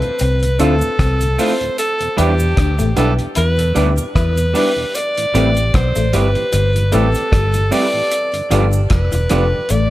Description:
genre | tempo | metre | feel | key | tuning
lovers rock reggae | 76 BPM | 4/4 | swing 56% on 16ths | unclear | A4 = 440 Hz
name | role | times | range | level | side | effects
edgy alto saxophone | melody | 0.0-9.9 s | G4 to D5 | -19 LUFS | equal | tape echo
mellow tonewheel organ | accompaniment | 0.0-9.6 s | D2 to G4 | -30 LUFS | right 4 dB | none
cloth-damped thuddy drum kit | drums | 0.0-9.9 s | hi-hat, kick drum, rim click | -20 LUFS | equal | gated reverb
electric guitar through a small old amp | riff | 0.2-9.9 s | E3 to E4 | -26 LUFS | left 6 dB | none
vintage muted fingered electric bass | bass | 0.2-9.9 s | E1 to E2 | -16 LUFS | equal | none
cabasa | percussion | 0.2-9.9 s | none | -34 LUFS | right 2 dB | tape echo
clear concert grand piano | accompaniment | 0.6-9.5 s | C4 to B4 | -25 LUFS | left 2 dB | none
electric guitar through a small old amp | stabs | 0.6-9.4 s | F3 to A4 | -23 LUFS | right 5 dB | none
room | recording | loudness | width
light reverb, small room ambience | none | -13 LUFS | side -16 dB against mid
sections
0.0-9.9 A section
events
none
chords
0.0 Dm7; 1.8 Em7; 4.9 Am7; 8.1 G7

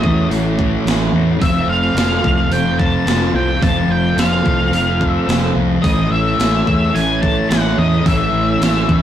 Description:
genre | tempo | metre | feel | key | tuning
rock, shoegaze and dream pop | 108 BPM | 4/4 | straight | unclear | A4 = 440 Hz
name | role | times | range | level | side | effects
octave-fuzz lead guitar | melody | 0.0-9.0 s | D#5 to A5 | -20 LUFS | left 2 dB | distortion
string machine, cellos | sustained chords | 0.0-9.0 s | E4 to A5 | -27 LUFS | left 1 dB | ensemble chorus
overdriven electric guitar | riff | 0.0-9.0 s | A2 to F4 | -21 LUFS | right 6 dB | none
thick fuzz guitar | riff | 0.0-9.0 s | F2 to A3 | -20 LUFS | left 5 dB | distortion
fingered electric bass | bass | 0.0-9.0 s | F1 to E2 | -19 LUFS | equal | none
gated 80s digital drum machine | drums | 0.0-9.0 s | hi-hat, kick drum, snare drum | -20 LUFS | right 1 dB | gated reverb, gated reverb snare, overdrive
room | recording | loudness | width
wet studio reverb, RT60 0.6 s | rough rehearsal-room recording, warm saturation | -13 LUFS | side -10 dB against mid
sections
0.0-9.0 A section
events
none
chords
0.0 A; 1.4 F; 5.8 Amaj7

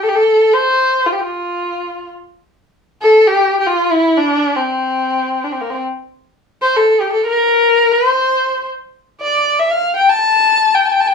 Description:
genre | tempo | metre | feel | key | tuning
persian | 116 BPM | 3/4 | straight | unclear | A4 = 440 Hz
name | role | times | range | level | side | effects
rich kamancheh | solo | 0.0-11.1 s | Bb3 to A5 | -12 LUFS | left 2 dB | none
room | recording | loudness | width
moderate booth ambience, RT60 0.2 s | studio reverb | -12 LUFS | side -5 dB against mid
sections
0.0-2.6 A section; 2.6-11.1 B section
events
none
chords
none

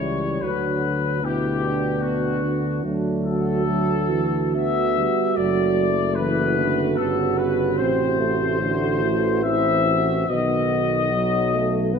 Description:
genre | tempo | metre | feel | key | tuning
classical, hymn-like piece for brass band | 73 BPM | 3/4 | rubato | unclear | A4 = 440 Hz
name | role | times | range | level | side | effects
warm trumpet section | melody | 0.0-12.0 s | F#4 to E5 | -25 LUFS | left 6 dB | none
warm French horn section | second line | 0.0-11.9 s | D4 to F#4 | -26 LUFS | right 9 dB | none
dark euphonium | accompaniment | 0.0-12.0 s | B2 to G3 | -27 LUFS | right 2 dB | none
warm euphonium | accompaniment | 0.0-12.0 s | F#3 to C4 | -28 LUFS | left 3 dB | none
mellow tuba | bass | 0.0-12.0 s | F#1 to D2 | -26 LUFS | left 1 dB | none
room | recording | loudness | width
moderate scoring stage reverb, RT60 1.9 s | minimal, uncompressed stereo recording | -19 LUFS | side -6 dB against mid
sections
0.0-12.0 A section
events
none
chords
0.4 Bm/D; 2.8 D; 5.4 D/F#; 7.8 F#dim/A; 10.3 B

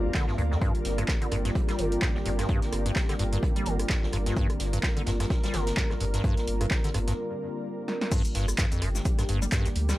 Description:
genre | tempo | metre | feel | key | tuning
acid house | 128 BPM | 4/4 | swing 57% on 16ths | G minor pentatonic | A4 = 440 Hz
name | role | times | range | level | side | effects
lush unison pad | sustained chords | 0.0-10.0 s | D3 to Bb4 | -35 LUFS | equal | chorus, vintage 12-bit sampler grit, sidechain pumping
acid bass, square | riff | 0.0-9.9 s | G1 to G3 | -31 LUFS | equal | wide subtle chorus, cassette tape, analog delay
warm sub bass | bass | 0.0-9.9 s | G1 to D2 | -29 LUFS | equal | sidechain pumping
ethereal airy pad | texture | 0.0-7.2 s | C4 to D5 | -35 LUFS | equal | ensemble chorus, built-in reverb, sidechain pumping
electronic kick drum | drums | 0.1-9.6 s | none | -27 LUFS | equal | none
punchy analog drum machine | drums | 0.1-10.0 s | cabasa, crash cymbal, handclaps, hi-hat, rim click, snare drum | -34 LUFS | equal | overdrive
vintage drum kit | drums | 0.1-10.0 s | hi-hat, snare drum | -42 LUFS | right 1 dB | high-pass filter on hats, high-pass filter on snare, high-pass filter on room
room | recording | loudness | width
light reverb | none | -25 LUFS | side -16 dB against mid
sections
0.0-8.1 A section; 8.1-10.0 B section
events
break 7.2-8.1; drum fill 7.9; drop 8.1-10.0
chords
0.0 Gm

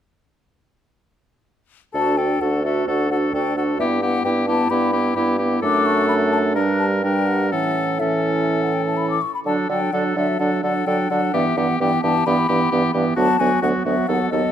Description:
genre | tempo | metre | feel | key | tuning
quick classical-period movement for wind quintet | 129 BPM | 4/4 | rubato | D major | A4 = 440 Hz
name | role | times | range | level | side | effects
mellow hollow concert flute | melody | 1.9-14.5 s | D#5 to D6 | -24 LUFS | left 6 dB | none
clear oboe | second line | 1.9-14.5 s | F#4 to Bb4 | -24 LUFS | left 4 dB | none
warm French horn | accompaniment | 1.9-14.5 s | E3 to D4 | -25 LUFS | equal | none
warm clarinet | accompaniment | 1.9-14.5 s | B3 to F#4 | -24 LUFS | right 7 dB | none
clear bassoon | bass | 1.9-14.4 s | D2 to D3 | -23 LUFS | right 2 dB | none
room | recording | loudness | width
light reverb | close, detailed microphones | -17 LUFS | side -10 dB against mid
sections
1.9-14.5 A section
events
none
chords
1.9 D; 3.8 Em/G; 5.6 D/F#; 6.6 Gm; 7.5 A; 9.5 D; 11.3 Em/G; 13.2 Bm/D

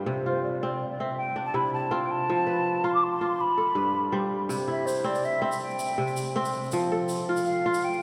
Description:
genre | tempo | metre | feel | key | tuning
west african traditional, West African string and xylophone music | 108 BPM (dotted quarters) | 12/8 | straight | C major | A4 = 440 Hz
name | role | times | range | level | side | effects
kora | arpeggios | 0.0-8.0 s | G2 to C5 | -30 LUFS | equal | none
mellow hollow silver concert flute | melody | 0.3-8.0 s | C5 to D6 | -31 LUFS | equal | none
tube shaker | percussion | 4.5-8.0 s | none | -43 LUFS | equal | none
room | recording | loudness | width
wet cathedral reverb, RT60 5.9 s | recorded in a church or concert hall | -27 LUFS | mono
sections
0.0-4.5 A section; 4.5-8.0 B section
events
flute solo 4.5-8.0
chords
0.1 C; 2.3 F; 3.4 G; 4.5 C; 6.7 F

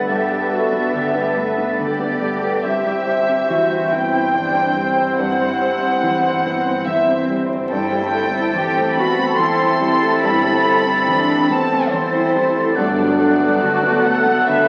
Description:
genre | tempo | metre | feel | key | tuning
cinematic | 71 BPM | 3/4 | rubato | unclear | A4 = 441 Hz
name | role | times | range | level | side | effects
muted studio violin section | melody | 0.0-14.7 s | A4 to C5 | -29 LUFS | equal | none
concert flute | second line | 0.0-14.7 s | F#6 to A6 | -26 LUFS | equal | none
muted studio violin section | second line | 0.0-14.7 s | C5 to C6 | -23 LUFS | equal | none
warm clarinet | second line | 0.0-14.7 s | B3 to C4 | -30 LUFS | equal | none
felt-muted upright piano | accompaniment | 0.0-14.7 s | G2 to C5 | -26 LUFS | equal | none
muted studio viola section | accompaniment | 0.0-14.7 s | G3 to A4 | -31 LUFS | equal | none
mellow French horn section | sustained chords | 0.0-14.7 s | F#3 to C4 | -28 LUFS | equal | none
muted studio cello section | bass | 0.0-14.7 s | C4 to B4 | -26 LUFS | equal | none
muted studio double bass section | bass | 0.0-13.5 s | G1 | -34 LUFS | equal | none
room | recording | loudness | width
wet recital hall reverb, RT60 1.8 s | very old 78 rpm record, vinyl crackle | -18 LUFS | mono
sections
0.0-14.7 A section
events
none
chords
0.0 Gadd9; 2.6 C/G; 7.7 Am7/G; 12.8 D6/G

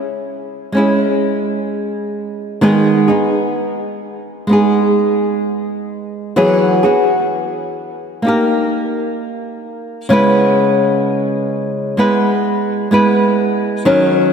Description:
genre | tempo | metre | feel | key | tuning
pop | 64 BPM | 4/4 | straight | unclear | A4 = 439 Hz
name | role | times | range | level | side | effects
flamenco guitar | solo | 0.0-14.3 s | C#3 to B4 | -13 LUFS | equal | tape echo
room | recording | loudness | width
wet lush hall reverb, RT60 2.7 s | dreamy mix soaked in reverb | -13 LUFS | side -6 dB against mid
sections
0.0-10.1 A section; 10.1-14.3 B section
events
none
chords
0.0 C#m; 2.6 G#m/D#; 6.4 Eadd9; 8.2 D#; 10.1 C#m7

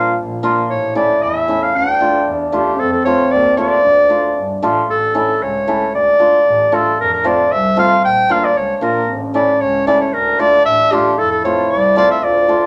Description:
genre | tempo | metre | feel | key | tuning
klezmer | 114 BPM | 2/4 | straight | D harmonic minor | A4 = 436 Hz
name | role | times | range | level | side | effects
clear clarinet | melody | 0.0-12.7 s | G4 to G5 | -16 LUFS | equal | none
trombone with bucket mute | second line | 0.0-4.9, 9.1-12.7 s | C4 to F4 | -24 LUFS | equal | none
hammered dulcimer | accompaniment | 0.0-12.6 s | A3 to F4 | -21 LUFS | equal | none
rich double bass | bass | 0.2-12.5 s | G1 to F2 | -29 LUFS | equal | none
room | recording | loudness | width
moderate studio reverb, RT60 0.5 s | none | -14 LUFS | mono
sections
0.0-4.9 A section; 4.9-12.7 A section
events
none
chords
0.0 Bb; 0.7 A; 1.7 Dm; 2.8 F; 3.8 Dm; 4.9 A; 5.9 Dm; 7.0 F; 8.0 Bb; 9.1 A; 10.1 Dm; 11.2 F

